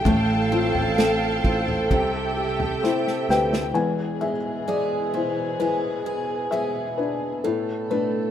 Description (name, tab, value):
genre	pop ballad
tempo	65 BPM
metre	4/4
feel	straight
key	unclear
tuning	A4 = 440 Hz
part	warm studio violin section	second line	0.0-3.7 s	G4 to A5	-30 LUFS	right 1 dB	none
part	felt-muted upright piano	accompaniment	0.0-8.3 s	E3 to G#5	-25 LUFS	left 4 dB	none
part	warm studio string section	sustained chords	0.0-8.3 s	B2 to G5	-28 LUFS	equal	none
part	picked steel-string acoustic guitar	arpeggios	0.0-8.3 s	E2 to B4	-29 LUFS	right 5 dB	none
part	sustaining fretless electric bass	bass	0.0-3.7 s	A1 to D2	-29 LUFS	right 1 dB	none
part	unplugged drum kit	drums	0.1-3.7 s	kick drum, snare drum, toms	-26 LUFS	equal	none
room	light reverb, studio reverb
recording	rough home demo mix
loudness	-21 LUFS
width	side -10 dB against mid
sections	0.0-3.7 A section; 3.7-8.3 B section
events	drum fill 2.8-3.7; felt piano solo 3.7-8.3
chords	0.1 F/A; 1.9 C6; 3.7 E; 7.4 Asus2